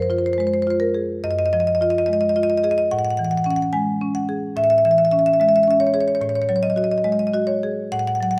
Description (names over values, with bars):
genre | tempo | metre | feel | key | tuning
classical, contemporary piece for solo marimba | 72 BPM | 4/4 | rubato | unclear | A4 = 441 Hz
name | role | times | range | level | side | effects
marimba with medium hard mallets | solo | 0.0-8.4 s | Gb2 to G#5 | -20 LUFS | equal | none
room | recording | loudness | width
moderate recital hall reverb, RT60 1.4 s | close, detailed microphones | -20 LUFS | mono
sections
0.0-8.4 A section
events
none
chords
0.0 Fm7/Gb; 2.9 Amaj7; 6.2 Ab5/A